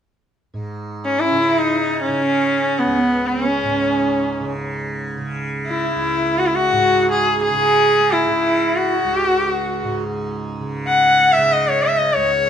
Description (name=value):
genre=indian classical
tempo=free time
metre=none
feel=none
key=C# raga bhimpalasi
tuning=A4 = 441 Hz
part: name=tanpura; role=drone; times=0.5-12.5 s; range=C#2 to C#3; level=-26 LUFS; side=right 2 dB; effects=none
part: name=bright sarangi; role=melody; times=1.1-12.5 s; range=B3 to F#5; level=-16 LUFS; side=left 2 dB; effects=none
part: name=hand-pumped harmonium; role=second line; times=1.2-12.5 s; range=B3 to F#5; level=-23 LUFS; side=right 6 dB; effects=none
room=moderate studio reverb, RT60 0.5 s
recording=minimal, uncompressed stereo recording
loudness=-16 LUFS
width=side -8 dB against mid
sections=0.5-12.5 A section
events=none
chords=none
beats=free time